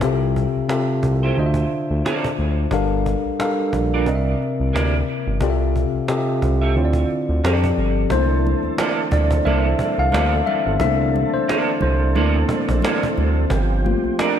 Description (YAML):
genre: R&B, neo-soul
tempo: 89 BPM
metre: 4/4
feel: swing 56% on 16ths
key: unclear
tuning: A4 = 445 Hz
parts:
  - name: tine electric piano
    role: accompaniment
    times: 0.0-14.4 s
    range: C3 to F5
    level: -21 LUFS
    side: moving between left 9 dB and right 2 dB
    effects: auto-pan
  - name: smooth gliding synth bass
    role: bass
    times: 0.0-14.1 s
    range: G1 to F2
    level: -20 LUFS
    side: right 1 dB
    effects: none
  - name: cajon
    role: drums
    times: 0.0-14.4 s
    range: none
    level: -29 LUFS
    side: equal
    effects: none
  - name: electric guitar through a small old amp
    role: second line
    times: 1.2-14.4 s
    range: A3 to E5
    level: -26 LUFS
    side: right 5 dB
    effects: analog chorus, diffuse ambient delay
  - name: tonewheel organ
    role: sustained chords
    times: 8.1-14.4 s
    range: D3 to A4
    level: -25 LUFS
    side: right 2 dB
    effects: chorus vibrato, slow rotary speaker
  - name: congas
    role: percussion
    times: 8.1-14.4 s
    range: none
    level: -32 LUFS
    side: right 4 dB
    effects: none
room: moderate lush hall reverb, RT60 2.0 s, small room ambience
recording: dreamy mix soaked in reverb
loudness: -17 LUFS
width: side -9 dB against mid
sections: 0.0-8.1 A section; 8.1-14.4 B section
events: tine electric piano solo 8.1-14.4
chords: 0.0 Fmaj9/C; 1.4 Dm7; 2.7 Gm7; 4.1 C9; 5.4 Fmaj9/C; 6.8 Dm7; 7.4 F69; 8.1 C13; 13.5 Gm7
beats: | 0.02 0.69 1.37 2.04 | 2.71 3.39 4.06 4.74 | 5.41 6.08 6.76 7.43 | 8.11 8.78 9.46 10.13 | 10.80 11.48 12.15 12.83 | 13.50 14.18